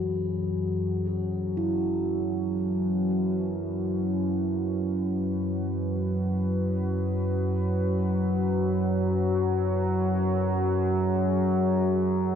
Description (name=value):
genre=dark ambient drone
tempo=free time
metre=none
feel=none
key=unclear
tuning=A4 = 444 Hz
part: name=dark analog pad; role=sustained chords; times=0.0-12.4 s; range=C#4 to B4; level=-35 LUFS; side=left 1 dB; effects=chorus
part: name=bronze singing bowl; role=arpeggios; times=0.0-7.7 s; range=E3 to F#4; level=-33 LUFS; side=right 2 dB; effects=diffuse ambient delay
part: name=analog drone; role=drone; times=0.0-12.4 s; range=F#2 to F#3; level=-25 LUFS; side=equal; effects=chorus
room=wet cathedral reverb, RT60 5.7 s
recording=none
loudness=-24 LUFS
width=side -8 dB against mid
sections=0.0-12.4 A section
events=fade-in on analog synth pad 0.0-12.4; fade-out on singing bowl 0.0-12.4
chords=0.0 F#sus2